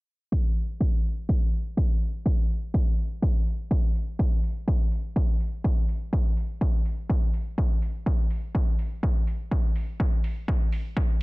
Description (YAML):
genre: bass house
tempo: 124 BPM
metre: 4/4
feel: swing 60% on 16ths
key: none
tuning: none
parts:
  - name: electronic kick drum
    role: drums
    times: 0.3-11.1 s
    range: none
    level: -23 LUFS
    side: equal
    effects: overdrive
  - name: electronic hi-hat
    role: drums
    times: 0.6-10.8 s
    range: none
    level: -51 LUFS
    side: right 3 dB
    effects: overdrive, low-pass filter on hats
room: little or no reverb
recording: dense, heavily limited modern master, low-pass filter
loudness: -24 LUFS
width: side -22 dB against mid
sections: 0.3-11.2 A section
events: filter sweep on drum 0.3-11.2; filter sweep 0.3-11.2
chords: none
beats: | 0.32 0.81 1.29 1.77 | 2.26 2.74 3.22 3.71 | 4.19 4.68 5.16 5.64 | 6.13 6.61 7.09 7.58 | 8.06 8.55 9.03 9.52 | 10.00 10.48 10.97